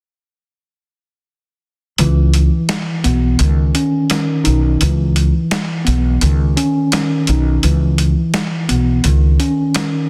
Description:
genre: hip hop, boom-bap hip-hop.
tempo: 85 BPM.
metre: 4/4.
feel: swing 57% on 16ths.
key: C# minor.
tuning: A4 = 440 Hz.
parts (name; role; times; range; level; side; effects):
mellow tine electric piano; accompaniment; 2.0-10.1 s; D#3 to D#4; -19 LUFS; equal; high-pass filter, low-pass filter.
upright bass; bass; 2.0-9.4 s; B1 to C#2; -16 LUFS; equal; none.
boom bap sampler-style drum kit; drums; 2.0-9.9 s; hi-hat, snare drum; -22 LUFS; equal; none.
room: little or no reverb.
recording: dense, heavily limited modern master.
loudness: -15 LUFS.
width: mono.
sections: 2.0-10.1 A section.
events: kick muted 2.0-10.1.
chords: 2.0 C#m7; 3.4 Badd9/C#; 4.8 E5/C#; 6.2 Badd9; 7.6 C#m7; 9.0 Badd9/C# (rootless).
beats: | 1.98 2.69 3.40 4.10 | 4.81 5.51 6.22 6.92 | 7.63 8.34 9.04 9.75.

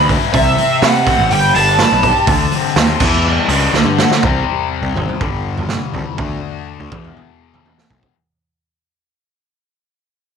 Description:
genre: psychedelic rock.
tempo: 123 BPM.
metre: 4/4.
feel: straight.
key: E minor.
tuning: A4 = 440 Hz.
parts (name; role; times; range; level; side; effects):
lead guitar through a small cranked amp; melody; 0.0-3.7 s; E5 to A5; -16 LUFS; right 4 dB; wah, overdrive, tape echo.
fuzz guitar; riff; 0.0-8.1 s; E2 to C5; -18 LUFS; left 14 dB; distortion, phaser.
fuzz picked electric bass; bass; 0.0-8.0 s; G1 to C3; -19 LUFS; equal; overdrive.
raw garage drum kit; drums; 0.1-8.1 s; crash cymbal, hi-hat, kick drum, snare drum, toms; -18 LUFS; right 4 dB; none.
congas; percussion; 0.1-4.2 s; none; -29 LUFS; right 15 dB; none.
room: light reverb, small room ambience.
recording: 1960s-style stereo with parts hard left and right.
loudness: -12 LUFS.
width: side -6 dB against mid.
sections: 0.0-4.2 A section; 4.2-8.1 B section.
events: drum fill 3.7-4.2, 7.7-8.1; fade-out 4.2-8.1.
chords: 0.3 Cmaj7; 1.3 Gadd9; 2.3 D5; 3.0 Em7; 3.7 D; 4.2 C5; 5.2 G5; 6.2 D5; 6.9 E5.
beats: | 0.34 0.83 1.31 1.80 | 2.28 2.77 3.25 3.74 | 4.23 4.72 5.21 5.70 | 6.18 6.67 7.17 7.66.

